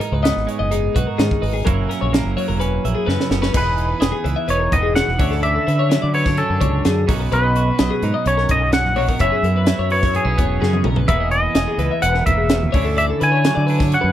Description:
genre	math rock and midwest emo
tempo	127 BPM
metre	4/4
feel	straight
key	E lydian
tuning	A4 = 440 Hz
part	twelve-string electric guitar	accompaniment	0.0-14.1 s	E2 to G#4	-24 LUFS	right 7 dB	none
part	twelve-string electric guitar	arpeggios	0.0-14.1 s	G#4 to E5	-24 LUFS	left 8 dB	wide subtle chorus
part	crisp fusion drum kit	drums	0.0-14.0 s	crash cymbal, hi-hat, kick drum, snare drum, toms	-21 LUFS	equal	none
part	growling fingered electric bass	bass	0.1-14.1 s	E1 to D3	-20 LUFS	equal	overdrive
part	twangy electric guitar	melody	3.6-14.1 s	G#4 to G#5	-21 LUFS	equal	none
room	little or no reverb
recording	none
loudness	-15 LUFS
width	side -11 dB against mid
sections	0.0-3.5 A section; 3.5-14.1 B section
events	drum fill 3.1-3.5, 10.6-11.1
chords	0.0 G#m9; 1.7 F#7; 3.5 Emaj7#11; 5.2 Dmaj9; 7.1 Bmaj9; 9.2 F#9sus4; 11.1 Emaj7#11; 12.7 Dmaj9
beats	0.24 0.71 1.18 | 1.66 2.13 2.60 3.07 | 3.55 4.02 4.49 4.96 | 5.44 5.91 6.38 6.86 | 7.33 7.80 8.27 8.74 | 9.21 9.68 10.15 10.62 | 11.09 11.56 12.03 12.50 | 12.97 13.44 13.91

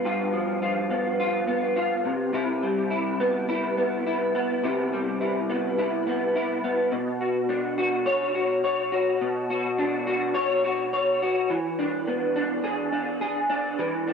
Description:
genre	indie pop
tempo	105 BPM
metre	4/4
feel	straight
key	unclear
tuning	A4 = 440 Hz
part	electric guitar through a small old amp	solo	0.0-14.1 s	G2 to C#5	-23 LUFS	left 1 dB	ensemble chorus, warbly pitch drift, tape echo
room	moderate spring reverb, RT60 1.8 s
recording	none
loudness	-23 LUFS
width	side -6 dB against mid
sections	0.0-6.9 A section; 6.9-14.1 B section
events	none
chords	0.0 G7; 2.1 Cmaj7; 6.9 Bmadd9; 11.5 E7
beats	| 0.05 0.62 1.19 1.77 | 2.34 2.91 3.49 4.06 | 4.63 5.21 5.78 6.35 | 6.93 7.50 8.07 8.64 | 9.22 9.79 10.36 10.93 | 11.51 12.08 12.65 13.22 | 13.79

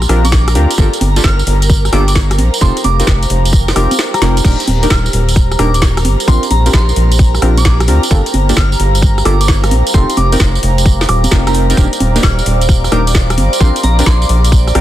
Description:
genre	UK garage, two-step garage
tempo	131 BPM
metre	4/4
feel	swing 67% on 16ths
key	G minor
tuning	A4 = 440 Hz
part	airy breathy pad	sustained chords	0.0-14.8 s	Bb4 to D6	-25 LUFS	equal	chorus, phaser, sidechain pumping
part	rubbery square bass	bass	0.0-14.8 s	Eb1 to D2	-12 LUFS	equal	none
part	garage drum kit	drums	0.0-14.8 s	congas, crash cymbal, hi-hat, rim click, snare drum, tambourine	-17 LUFS	right 1 dB	none
part	deep dark ambient pad	texture	0.0-14.8 s	G4 to Bb5	-22 LUFS	right 1 dB	chorus, built-in reverb, sidechain pumping
part	deep mellow chord stab	stabs	0.1-14.8 s	Bb3 to Bb4	-19 LUFS	equal	chorus, dub echo
part	soft synth bell	melody	0.2-14.4 s	Bb5 to F6	-22 LUFS	equal	chorus, phaser, dub echo
part	electronic kick drum	drums	0.3-14.6 s	none	-11 LUFS	equal	none
room	digital ambience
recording	dense, heavily limited modern master, vinyl crackle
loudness	-9 LUFS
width	side -13 dB against mid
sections	0.0-14.8 A section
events	kick drops out 4.0-4.4; drum fill 4.2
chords	0.0 Bb69; 0.8 Gm9; 2.6 F9sus4; 4.4 Ebmaj7; 6.3 Bb69; 8.1 Gm9; 9.9 F9sus4; 11.8 Ebmaj7; 13.6 Bb69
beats	0.32 | 0.78 1.24 1.70 2.15 | 2.61 3.07 3.53 3.99 | 4.45 4.90 5.36 5.82 | 6.28 6.74 7.19 7.65 | 8.11 8.57 9.03 9.48 | 9.94 10.40 10.86 11.31 | 11.77 12.23 12.69 13.15 | 13.61 14.06 14.52

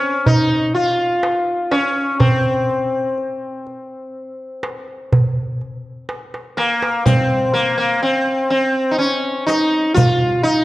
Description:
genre	Arabic maqam ensemble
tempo	124 BPM (eighths)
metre	10/8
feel	straight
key	C maqam kurd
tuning	A4 = 441 Hz
part	sitar	melody	0.0-10.6 s	Bb3 to F4	-17 LUFS	equal	none
part	darbuka	percussion	0.3-10.2 s	none	-18 LUFS	right 1 dB	none
part	riq	percussion	7.1-10.6 s	none	-27 LUFS	left 4 dB	none
room	wet recital hall reverb, RT60 1.7 s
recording	worn, warbling old tape, cassette tape, warbly pitch drift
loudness	-15 LUFS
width	side -17 dB against mid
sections	0.0-7.1 A section; 7.1-10.6 A section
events	drum fill 6.1-7.1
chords	none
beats	0.26 0.75 1.24 1.72 | 2.21 2.69 3.18 3.66 4.15 4.63 5.12 5.60 6.09 6.57 | 7.06 7.54 8.03 8.51 9.00 9.48 9.97 10.45

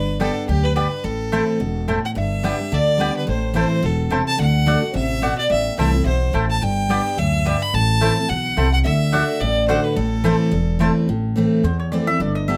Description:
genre	bluegrass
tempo	215 BPM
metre	4/4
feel	swing 56% on 8ths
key	A dorian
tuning	A4 = 445 Hz
part	clear fiddle	melody	0.0-10.8 s	G4 to B5	-27 LUFS	equal	none
part	lap resonator guitar	second line	0.0-10.8 s	G4 to B5	-29 LUFS	equal	none
part	picked steel-string acoustic guitar	accompaniment	0.0-12.6 s	E2 to G4	-24 LUFS	equal	none
part	upright bass	bass	0.0-12.6 s	E1 to E2	-24 LUFS	equal	none
part	mandolin	stabs	0.2-12.6 s	A3 to A5	-26 LUFS	equal	none
room	light reverb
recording	close, detailed microphones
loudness	-19 LUFS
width	mono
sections	0.0-2.2 A section; 2.2-11.1 B section; 11.1-12.6 C section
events	mandolin solo 11.1-12.6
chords	0.0 G; 1.0 Am; 2.2 G; 3.3 Am; 4.4 D; 5.5 Am; 6.6 G; 7.7 Am; 8.9 D; 10.0 Am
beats	0.21 0.49 0.77 | 1.05 1.33 1.61 1.89 | 2.17 2.44 2.72 3.00 | 3.28 3.56 3.84 4.12 | 4.39 4.67 4.95 5.23 | 5.51 5.79 6.07 6.34 | 6.62 6.90 7.18 7.46 | 7.74 8.02 8.29 8.57 | 8.85 9.13 9.41 9.69 | 9.97 10.24 10.52 10.80 | 11.08 11.36 11.64 11.92 | 12.20 12.48

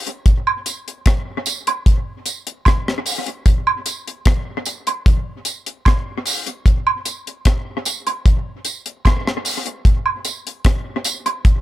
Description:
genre	reggae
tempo	75 BPM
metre	4/4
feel	straight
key	none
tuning	none
part	deep reggae drum kit	drums	0.1-11.6 s	hi-hat, kick drum, rim click	-16 LUFS	equal	analog delay
part	woodblock and tambourine	percussion	0.5-11.4 s	none	-20 LUFS	right 4 dB	none
room	little or no reverb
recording	echo-heavy mix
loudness	-17 LUFS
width	side -15 dB against mid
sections	0.0-11.6 A section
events	none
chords	none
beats	| 0.26 1.06 1.86 2.66 | 3.46 4.26 5.06 5.86 | 6.66 7.46 8.25 9.05 | 9.85 10.65 11.45

